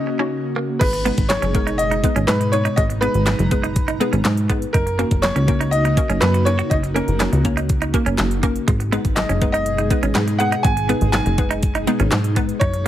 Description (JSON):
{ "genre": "dance-pop", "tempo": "122 BPM", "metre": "4/4", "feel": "straight", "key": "G# minor", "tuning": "A4 = 443 Hz", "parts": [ { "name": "clear grand piano", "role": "melody", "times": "0.0-12.9 s", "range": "A#4 to G#5", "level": "-23 LUFS", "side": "equal", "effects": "tape echo" }, { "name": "airy breathy pad", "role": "sustained chords", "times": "0.0-12.9 s", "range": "B2 to A#5", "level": "-27 LUFS", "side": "equal", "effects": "chorus, sidechain pumping" }, { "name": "direct-recorded clean electric guitar", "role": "riff", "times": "0.0-12.9 s", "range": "G#3 to F#4", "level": "-26 LUFS", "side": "right 5 dB", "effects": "lush chorus" }, { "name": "hollow square pluck", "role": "accompaniment", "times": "0.2-12.9 s", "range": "G#3 to C#5", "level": "-24 LUFS", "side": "left 1 dB", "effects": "chorus" }, { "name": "plucky analog bass", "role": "bass", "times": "0.8-12.9 s", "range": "F#1 to G#2", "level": "-21 LUFS", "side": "equal", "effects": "sidechain pumping" }, { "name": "pop drum kit", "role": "drums", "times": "0.8-12.9 s", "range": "crash cymbal, handclaps, hi-hat, kick drum, snare drum", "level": "-21 LUFS", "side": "equal", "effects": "none" }, { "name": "group handclap", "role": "percussion", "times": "1.3-12.2 s", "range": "none", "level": "-33 LUFS", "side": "left 4 dB", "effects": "none" } ], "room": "little or no reverb", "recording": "heavily compressed radio sound", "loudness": "-16 LUFS", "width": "side -12 dB against mid", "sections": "0.8-12.9 A section", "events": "break 0.0-0.8", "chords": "0.0 D#m7; 0.8 G#m; 4.7 D#m7/F#; 8.7 G#m", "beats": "0.32 | 0.81 1.30 1.79 2.29 | 2.78 3.27 3.76 4.25 | 4.74 5.24 5.73 6.22 | 6.71 7.20 7.70 8.19 | 8.68 9.17 9.66 10.15 | 10.64 11.14 11.63 12.12 | 12.61" }